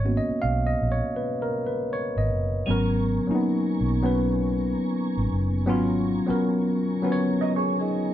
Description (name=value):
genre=R&B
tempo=80 BPM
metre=4/4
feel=swing 62% on 16ths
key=G# dorian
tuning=A4 = 441 Hz
part: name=tine electric piano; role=accompaniment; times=0.0-8.1 s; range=F#3 to E#5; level=-24 LUFS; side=left 1 dB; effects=none
part: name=vintage muted fingered electric bass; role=bass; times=0.0-6.3 s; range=F#1 to B1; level=-26 LUFS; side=right 1 dB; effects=none
part: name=percussive tonewheel organ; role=sustained chords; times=2.7-8.1 s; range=B3 to C#6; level=-37 LUFS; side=right 2 dB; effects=slow rotary speaker, chorus vibrato
part: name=clean electric guitar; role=second line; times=7.4-8.1 s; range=D#4 to D#5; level=-27 LUFS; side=right 6 dB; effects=none
room=moderate studio ambience, RT60 0.5 s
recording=band playing live in one room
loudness=-22 LUFS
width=side -12 dB against mid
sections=0.0-2.7 A section; 2.7-8.1 B section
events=tine electric piano solo 0.0-2.7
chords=0.0 G#m11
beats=0.42 1.17 1.92 | 2.67 3.42 4.17 4.92 | 5.67 6.42 7.17 7.92